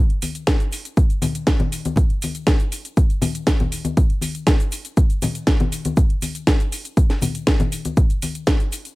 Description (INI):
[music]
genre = house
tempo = 120 BPM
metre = 4/4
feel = straight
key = none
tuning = none
[part]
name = house drum kit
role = drums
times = 0.1-8.9 s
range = hi-hat, shaker, snare drum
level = -24 LUFS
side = equal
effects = none
[part]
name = tube shaker and congas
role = percussion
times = 0.1-9.0 s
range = none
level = -25 LUFS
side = left 3 dB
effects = sidechain pumping on perc
[part]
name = electronic kick drum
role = drums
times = 0.5-8.6 s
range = none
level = -17 LUFS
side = equal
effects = none
[sound]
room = little or no reverb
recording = none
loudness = -18 LUFS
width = side -20 dB against mid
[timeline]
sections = 0.0-9.0 A section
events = none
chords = none